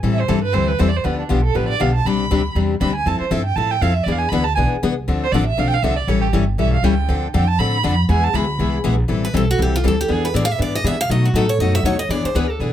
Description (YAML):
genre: acoustic string swing (jazz manouche)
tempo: 239 BPM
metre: 4/4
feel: swing 56% on 8ths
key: A minor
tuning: A4 = 440 Hz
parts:
  - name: picked steel-string acoustic guitar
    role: accompaniment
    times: 0.0-12.7 s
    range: B2 to A4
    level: -21 LUFS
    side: left 5 dB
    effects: none
  - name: upright bass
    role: bass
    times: 0.0-12.7 s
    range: G1 to C3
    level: -20 LUFS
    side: right 1 dB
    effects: none
  - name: warm violin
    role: second line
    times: 0.1-8.7 s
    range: D4 to B5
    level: -22 LUFS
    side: right 6 dB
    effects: none
  - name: picked steel-string acoustic guitar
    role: melody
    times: 9.2-12.7 s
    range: F4 to F5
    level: -21 LUFS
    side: right 2 dB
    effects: none
room: little or no reverb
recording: close, detailed microphones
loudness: -16 LUFS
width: side -11 dB against mid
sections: 0.0-1.0 A section; 1.0-9.1 A section; 9.1-12.7 A section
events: violin solo 0.0-9.1; steel-string acoustic guitar solo 9.1-12.7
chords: 0.0 Am7; 1.0 G7; 2.1 Csus2; 3.1 Fmaj7; 4.1 E7; 5.1 Dm7; 6.1 A7; 7.1 Dm7; 8.1 E; 9.1 Am7; 10.1 E7; 11.1 B7; 12.1 E7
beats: | 0.03 0.28 0.54 0.79 | 1.04 1.29 1.55 1.80 | 2.05 2.30 2.56 2.81 | 3.06 3.31 3.56 3.82 | 4.07 4.32 4.57 4.82 | 5.08 5.33 5.58 5.83 | 6.08 6.33 6.58 6.83 | 7.08 7.33 7.58 7.84 | 8.09 8.34 8.59 8.84 | 9.09 9.34 9.59 9.84 | 10.09 10.34 10.59 10.85 | 11.10 11.35 11.60 11.85 | 12.10 12.35 12.60